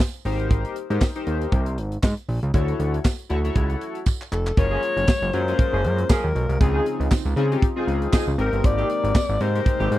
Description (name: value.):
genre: early-eighties boogie funk.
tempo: 118 BPM.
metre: 4/4.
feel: swing 56% on 16ths.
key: Gb lydian.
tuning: A4 = 440 Hz.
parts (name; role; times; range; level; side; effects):
tight funk drum kit; drums; 0.0-10.0 s; handclaps, hi-hat, kick drum, snare drum; -20 LUFS; equal; none.
chorused polysynth; accompaniment; 0.2-10.0 s; C4 to C#5; -28 LUFS; left 4 dB; none.
fat analog bass; bass; 0.3-10.0 s; F1 to Db3; -23 LUFS; equal; none.
tambourine; percussion; 1.0-9.3 s; none; -39 LUFS; right 24 dB; none.
breathy alto saxophone; melody; 4.3-10.0 s; Ab4 to D5; -25 LUFS; left 2 dB; slapback echo.
chorused pulse-width pad; sustained chords; 4.6-10.0 s; C3 to G4; -34 LUFS; right 1 dB; none.
mellow horn section; second line; 4.7-9.9 s; Eb3 to Ab4; -29 LUFS; right 3 dB; none.
room: little or no reverb.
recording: dry, close 1970s-style studio recording.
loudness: -20 LUFS.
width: side -15 dB against mid.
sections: 0.0-4.6 A section; 4.6-10.0 B section.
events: drum fill 4.1-4.6.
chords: 0.3 Abmaj9; 2.5 Dmaj9; 4.6 Gbmaj9; 6.6 Dbmaj9; 8.4 Abmaj9.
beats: 0.00 | 0.51 1.01 1.52 2.03 | 2.54 3.05 3.56 4.07 | 4.57 5.08 5.59 6.10 | 6.61 7.12 7.62 8.13 | 8.64 9.15 9.66.